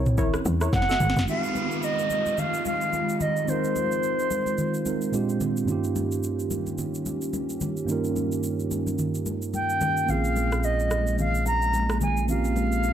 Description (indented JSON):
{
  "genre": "amapiano",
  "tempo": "109 BPM",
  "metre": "4/4",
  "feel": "swing 58% on 16ths",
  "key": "F minor",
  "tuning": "A4 = 436 Hz",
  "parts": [
    { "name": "hollow soft pad", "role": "sustained chords", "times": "0.0-12.9 s", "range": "G2 to G4", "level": "-32 LUFS", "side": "left 2 dB", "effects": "chorus" },
    { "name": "deep mellow chord stab", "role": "stabs", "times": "0.0-1.0 s", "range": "E4 to Fb5", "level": "-32 LUFS", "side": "left 2 dB", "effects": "chorus, tape echo" },
    { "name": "woody log drum bass", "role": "bass", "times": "0.0-1.3 s", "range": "Gb1 to E2", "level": "-25 LUFS", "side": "equal", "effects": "none" },
    { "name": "afro-pop drum kit", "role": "drums", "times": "0.1-12.9 s", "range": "kick drum, rim click, shaker, snare drum, toms", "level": "-32 LUFS", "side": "equal", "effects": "overdrive" },
    { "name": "congas", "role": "percussion", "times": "0.2-12.7 s", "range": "none", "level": "-33 LUFS", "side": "left 1 dB", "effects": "none" },
    { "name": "silver concert flute", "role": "melody", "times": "0.7-5.4, 9.5-12.9 s", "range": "C5 to Bb5", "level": "-26 LUFS", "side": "equal", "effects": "tape echo" },
    { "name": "mellow tine electric piano", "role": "accompaniment", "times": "1.2-12.9 s", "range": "G2 to Bb4", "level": "-29 LUFS", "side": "right 6 dB", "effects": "none" },
    { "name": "downlifter", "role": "sound effects", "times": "1.3-5.7 s", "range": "none", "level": "-36 LUFS", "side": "right 1 dB", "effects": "none" },
    { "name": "saturated sub bass", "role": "bass", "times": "10.1-12.9 s", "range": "Bb1", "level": "-26 LUFS", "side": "equal", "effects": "none" }
  ],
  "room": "light reverb",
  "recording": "dark, warm production",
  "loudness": "-23 LUFS",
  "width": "side -10 dB against mid",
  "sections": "0.0-1.3 A section; 1.3-12.9 B section",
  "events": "drop 0.0-1.3; drum fill 0.7-1.3",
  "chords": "0.0 C7b9; 0.7 Gbm7; 1.3 Fm7; 5.1 Bb13; 5.7 Eb7/G; 10.1 Bbm7"
}